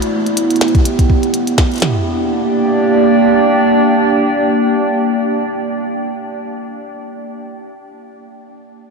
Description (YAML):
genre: IDM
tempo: 124 BPM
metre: 4/4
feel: swing 56% on 16ths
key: unclear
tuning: A4 = 438 Hz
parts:
  - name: warbly tape-like pad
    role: sustained chords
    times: 0.0-6.5 s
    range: Bb3 to G5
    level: -14 LUFS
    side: right 1 dB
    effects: chorus, built-in reverb
  - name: glitchy drum kit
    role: drums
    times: 0.0-1.8 s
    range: hi-hat, snare drum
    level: -23 LUFS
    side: equal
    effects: diffuse ambient delay
  - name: glitchy drum kit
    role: drums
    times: 0.7-1.9 s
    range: kick drum, snare drum, toms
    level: -14 LUFS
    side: equal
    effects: none
room: wet huge ambient reverb, RT60 8.5 s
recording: dreamy mix soaked in reverb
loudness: -12 LUFS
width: side -4 dB against mid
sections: 0.0-1.8 A section; 1.8-5.7 B section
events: filter sweep on ambient pad 0.0-1.8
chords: 0.0 Em; 1.8 Gm